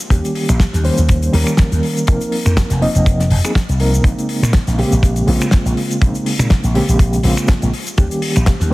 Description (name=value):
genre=nu-disco, nu disco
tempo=122 BPM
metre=4/4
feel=swing 55% on 16ths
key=Bb dorian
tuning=A4 = 440 Hz
part: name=damped 70s drum kit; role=drums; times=0.0-8.7 s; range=finger snaps, hi-hat, shaker, snare drum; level=-22 LUFS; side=left 1 dB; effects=studio ambience
part: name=mellow reed electric piano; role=accompaniment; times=0.1-8.7 s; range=Db3 to Eb5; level=-18 LUFS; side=equal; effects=fast tremolo, sidechain pumping, dub echo
part: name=slap bass with an envelope filter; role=bass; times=0.1-8.7 s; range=F1 to Bb2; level=-15 LUFS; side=equal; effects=tube saturation
part: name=kick drum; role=drums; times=0.1-8.6 s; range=none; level=-13 LUFS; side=equal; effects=studio ambience
room=small room ambience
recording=heavily compressed radio sound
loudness=-13 LUFS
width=side -20 dB against mid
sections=0.0-8.7 A section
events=none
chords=0.0 Eb7; 2.1 F7sus4; 4.0 Bbm11; 7.7 Eb7